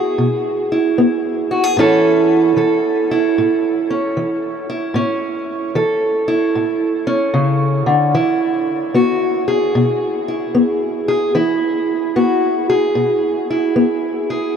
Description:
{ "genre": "blues", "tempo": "75 BPM", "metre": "4/4", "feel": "swing 66% on 8ths", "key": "E major", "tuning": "A4 = 440 Hz", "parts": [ { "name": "fingerpicked steel-string acoustic guitar", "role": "solo", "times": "0.0-14.5 s", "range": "A2 to A4", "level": "-14 LUFS", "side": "right 1 dB", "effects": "none" } ], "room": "wet huge ambient reverb, RT60 9.0 s", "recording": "in a vast, echoing space", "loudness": "-14 LUFS", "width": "side -7 dB against mid", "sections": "0.0-14.6 A section", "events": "none", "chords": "0.0 E; 1.8 A; 8.2 E" }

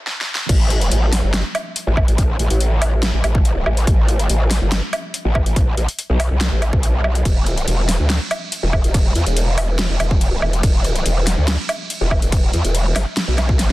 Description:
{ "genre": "heavy wobble dubstep", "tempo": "142 BPM", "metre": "4/4", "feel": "half-time", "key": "unclear", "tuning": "A4 = 438 Hz", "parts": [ { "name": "dubstep drum kit", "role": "drums", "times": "0.1-13.7 s", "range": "crash cymbal, hi-hat, snare drum, woodblock", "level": "-22 LUFS", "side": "equal", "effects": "none" }, { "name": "growl bass", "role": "bass", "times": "0.5-13.7 s", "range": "E1 to E2", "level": "-17 LUFS", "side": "equal", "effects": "chorus, overdrive" }, { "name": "electronic kick drum", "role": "drums", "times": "0.5-13.6 s", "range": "none", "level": "-16 LUFS", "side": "equal", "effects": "none" } ], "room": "little or no reverb", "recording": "dense, heavily limited modern master, high-pass filter", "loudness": "-15 LUFS", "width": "side -18 dB against mid", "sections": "0.5-13.7 A section", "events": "stop 0.0-0.5; drum fill 0.1-0.5; drop 0.5-13.7", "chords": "none" }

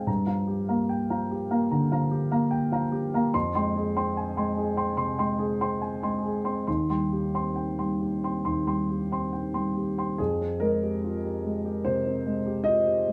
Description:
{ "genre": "neoclassical minimalist piano", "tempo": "67-74 BPM", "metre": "4/4", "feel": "rubato", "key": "unclear", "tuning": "A4 = 441 Hz", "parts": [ { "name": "dark concert grand piano", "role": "solo", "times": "0.0-13.1 s", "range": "Eb2 to C6", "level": "-27 LUFS", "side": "equal", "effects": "none" } ], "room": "moderate studio reverb, RT60 0.7 s", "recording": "band playing live in one room", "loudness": "-27 LUFS", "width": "mono", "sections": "0.0-10.2 A section; 10.2-13.1 B section", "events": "none", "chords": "0.1 Gm7; 3.3 Fmadd9; 6.7 Cm/Eb; 10.2 Fmadd9" }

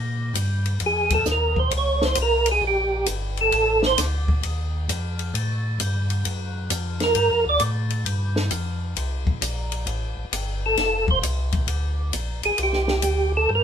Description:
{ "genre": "soul jazz organ trio", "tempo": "132 BPM", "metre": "4/4", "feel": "swing 67% on 8ths", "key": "F mixolydian", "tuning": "A4 = 440 Hz", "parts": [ { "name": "tonewheel organ", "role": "bass", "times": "0.0-13.6 s", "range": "F1 to Bb2", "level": "-25 LUFS", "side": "equal", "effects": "slow rotary speaker" }, { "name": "compact cocktail drum kit", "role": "drums", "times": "0.4-13.2 s", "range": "hi-hat, kick drum, ride cymbal, snare drum", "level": "-28 LUFS", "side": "left 2 dB", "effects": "none" }, { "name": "percussive tonewheel organ", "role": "melody", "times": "0.9-4.0, 7.0-7.6, 10.7-13.6 s", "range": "G4 to D5", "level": "-20 LUFS", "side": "right 2 dB", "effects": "slow rotary speaker, chorus vibrato" } ], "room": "moderate small room reverb, RT60 0.5 s", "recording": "minimal, uncompressed stereo recording", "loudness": "-20 LUFS", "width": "side -8 dB against mid", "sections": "0.0-13.6 A section", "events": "tonewheel organ solo 0.0-13.6", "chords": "0.0 Bb5; 1.7 Bbm; 3.5 F7; 5.4 Gsus2; 6.3 Gbmaj7; 7.2 G5; 9.0 C5; 10.8 F5; 11.7 Bb7; 12.6 C5" }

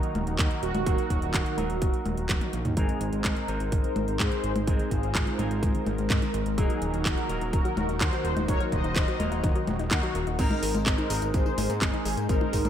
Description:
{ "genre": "italo disco", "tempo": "126 BPM", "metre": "4/4", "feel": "straight", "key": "unclear", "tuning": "A4 = 440 Hz", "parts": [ { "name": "mellow synth brass", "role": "melody", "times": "0.0-12.7 s", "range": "Eb4 to Eb5", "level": "-32 LUFS", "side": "equal", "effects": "chorus, ping-pong delay" }, { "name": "lush unison pad", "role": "sustained chords", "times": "0.0-12.7 s", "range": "Eb3 to C5", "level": "-34 LUFS", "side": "equal", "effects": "chorus, phaser" }, { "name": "electric guitar with an envelope filter", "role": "stabs", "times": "0.0-12.7 s", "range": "Ab2 to Bb4", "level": "-36 LUFS", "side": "right 1 dB", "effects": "vibrato effect, low-pass filter, ping-pong delay" }, { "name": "house drum kit", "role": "drums", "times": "0.0-12.7 s", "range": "congas, crash cymbal, handclaps, hi-hat, tambourine, toms", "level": "-31 LUFS", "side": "equal", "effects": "gated reverb" }, { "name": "fat analog bass", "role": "bass", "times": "0.1-12.7 s", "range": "Eb1 to Ab2", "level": "-31 LUFS", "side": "equal", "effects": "none" }, { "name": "electronic kick drum", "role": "drums", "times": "0.4-12.6 s", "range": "none", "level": "-27 LUFS", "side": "equal", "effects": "none" }, { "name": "analog pluck", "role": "arpeggios", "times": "2.8-12.7 s", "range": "C3 to Eb4", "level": "-37 LUFS", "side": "left 3 dB", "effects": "chorus, ping-pong delay" } ], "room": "light reverb, digital ambience", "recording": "none", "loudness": "-24 LUFS", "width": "side -10 dB against mid", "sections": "0.0-2.8 A section; 2.8-10.4 B section; 10.4-12.7 C section", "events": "drum fill 2.3-2.8", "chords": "0.0 Ebm; 2.8 Abadd9; 6.6 Ebm; 10.4 Abadd9" }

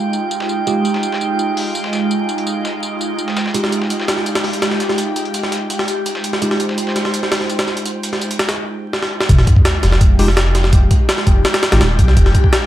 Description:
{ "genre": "drum and bass, jungle", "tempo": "167 BPM", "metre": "4/4", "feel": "straight", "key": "F minor", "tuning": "A4 = 440 Hz", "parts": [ { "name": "airy breathy pad", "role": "sustained chords", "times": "0.0-12.7 s", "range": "Ab3 to C5", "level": "-22 LUFS", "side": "right 1 dB", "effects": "chorus, phaser" }, { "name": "tine electric piano", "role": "stabs", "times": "0.0-11.8 s", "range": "Ab3 to G4", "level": "-23 LUFS", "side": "right 1 dB", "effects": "medium stereo tremolo, vintage 12-bit sampler grit, low-pass filter, dub echo" }, { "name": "drifting glass-harmonics texture", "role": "texture", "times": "0.0-8.6 s", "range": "G5", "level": "-26 LUFS", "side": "right 4 dB", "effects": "chorus, built-in reverb" }, { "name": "dusty soul sampler-style drum kit", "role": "drums", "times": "0.1-8.5 s", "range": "hi-hat, snare drum, tambourine", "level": "-26 LUFS", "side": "left 2 dB", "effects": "high-pass filter on perc, high-pass filter on snare, high-pass filter on hats" }, { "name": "jungle sampler-style drum kit", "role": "drums", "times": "3.5-12.6 s", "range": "hi-hat, kick drum, snare drum", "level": "-15 LUFS", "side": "equal", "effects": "none" }, { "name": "soft dub sub bass", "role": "bass", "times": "9.3-12.3 s", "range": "Eb1 to C2", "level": "-14 LUFS", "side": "equal", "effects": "tube saturation" }, { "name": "sub drop", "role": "sound effects", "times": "9.3-10.7 s", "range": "none", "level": "-19 LUFS", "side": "equal", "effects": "none" } ], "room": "light reverb, digital ambience", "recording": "vinyl crackle", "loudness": "-14 LUFS", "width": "side -13 dB against mid", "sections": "0.0-9.3 A section; 9.3-12.7 B section", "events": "drum fill 8.9-9.3; drop 9.3-12.7; impact 9.3-10.7", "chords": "0.0 Fm9" }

